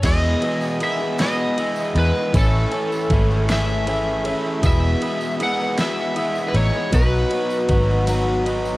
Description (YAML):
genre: folk rock and heartland rock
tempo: 52 BPM (dotted quarters)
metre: 6/8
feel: straight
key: E major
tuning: A4 = 437 Hz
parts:
  - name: overdriven slide guitar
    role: melody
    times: 0.0-8.8 s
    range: A4 to F#5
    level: -24 LUFS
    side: left 1 dB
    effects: cassette tape, analog delay
  - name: picked twelve-string acoustic guitar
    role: accompaniment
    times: 0.0-8.8 s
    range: E2 to G#4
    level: -27 LUFS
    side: left 2 dB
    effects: cassette tape
  - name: reed electric piano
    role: accompaniment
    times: 0.0-8.8 s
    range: B3 to D#6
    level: -29 LUFS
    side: right 2 dB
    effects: cassette tape
  - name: crunchy overdriven guitar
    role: riff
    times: 0.0-8.8 s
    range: E2 to F#4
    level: -25 LUFS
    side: right 1 dB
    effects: cassette tape
  - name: vintage muted fingered electric bass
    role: bass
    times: 0.0-8.8 s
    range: E1 to E2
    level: -20 LUFS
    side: equal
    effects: none
  - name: dubstep drum kit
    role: drums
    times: 0.0-8.6 s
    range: crash cymbal, kick drum, ride cymbal, snare drum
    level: -25 LUFS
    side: equal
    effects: overdrive, cassette tape
  - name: tambourine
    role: percussion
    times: 0.0-8.8 s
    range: none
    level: -42 LUFS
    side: right 2 dB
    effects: none
room: light reverb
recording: home recording on cassette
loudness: -17 LUFS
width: side -19 dB against mid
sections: 0.0-8.8 A section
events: kick and snare drop out 8.1-8.8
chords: 0.0 Emaj7; 2.3 Amaj7; 4.6 Emaj7; 6.9 B